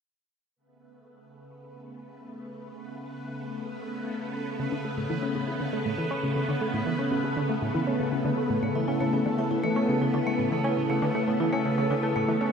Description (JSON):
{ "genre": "ambient, sequencer-driven space music", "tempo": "119 BPM", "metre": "4/4", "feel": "straight", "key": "A major", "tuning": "A4 = 440 Hz", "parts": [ { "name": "phased string machine", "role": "sustained chords", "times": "0.6-12.5 s", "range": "C#3 to B3", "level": "-30 LUFS", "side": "equal", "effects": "ensemble chorus, phaser" }, { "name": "bubbling stepped-filter texture", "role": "texture", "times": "1.6-12.5 s", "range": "A4 to B4", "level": "-37 LUFS", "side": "equal", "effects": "chorus, built-in reverb" }, { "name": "tight sequenced synth", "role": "riff", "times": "4.6-12.5 s", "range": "A2 to C#4", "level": "-29 LUFS", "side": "equal", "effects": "chorus, phaser, tape echo" }, { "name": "vibraphone with medium hard mallets", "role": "arpeggios", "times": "8.6-12.5 s", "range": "A3 to E4", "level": "-28 LUFS", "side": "equal", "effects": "auto-pan, tape echo" } ], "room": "wet huge ambient reverb, RT60 7.1 s", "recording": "none", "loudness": "-25 LUFS", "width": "side -6 dB against mid", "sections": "0.6-8.6 A section; 8.6-12.5 B section", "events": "fade-in on string machine 0.6-8.6; fade-in on synth texture 0.6-8.6", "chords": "0.6 Aadd9" }